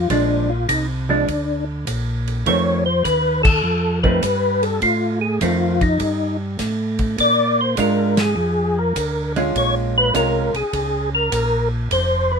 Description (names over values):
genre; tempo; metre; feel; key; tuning
soul jazz organ trio; 102 BPM; 4/4; swing 68% on 8ths; unclear; A4 = 440 Hz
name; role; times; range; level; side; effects
percussive tonewheel organ; melody; 0.0-12.4 s; D4 to D5; -19 LUFS; left 1 dB; slow rotary speaker, chorus vibrato
tonewheel organ; bass; 0.0-12.4 s; F1 to Bb2; -22 LUFS; right 1 dB; stopped rotary speaker
hollow-body jazz guitar; accompaniment; 0.1-10.5 s; Eb3 to F4; -21 LUFS; right 2 dB; none
warm soul drum kit; drums; 0.1-12.1 s; crash cymbal, hi-hat, kick drum, ride cymbal, snare drum; -26 LUFS; equal; none
room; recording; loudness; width
light reverb; minimal, uncompressed stereo recording; -17 LUFS; side -5 dB against mid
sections
0.0-12.4 A section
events
band accent 3.3, 8.1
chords
0.1 Bb7; 2.5 F7; 7.2 Bb7; 9.5 Bbm7